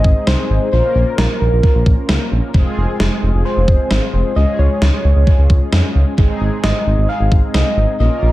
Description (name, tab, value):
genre	synth-pop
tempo	132 BPM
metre	4/4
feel	straight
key	unclear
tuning	A4 = 442 Hz
part	soft struck synth lead	melody	0.0-8.3 s	Ab4 to F5	-21 LUFS	equal	chorus, dub echo
part	mellow synth brass	accompaniment	0.0-8.3 s	Ab3 to Bb4	-22 LUFS	equal	chorus
part	smooth synth bass	bass	0.0-8.3 s	F1 to F2	-14 LUFS	equal	none
part	gated 80s digital drum machine	drums	0.0-7.6 s	kick drum, snare drum	-16 LUFS	equal	gated reverb, gated reverb snare, dub echo
room	light reverb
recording	echo-heavy mix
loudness	-12 LUFS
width	side -16 dB against mid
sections	0.0-8.3 A section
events	none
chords	0.0 Ab; 0.7 Bbmadd9; 2.5 Fm; 4.4 Db; 6.2 Ab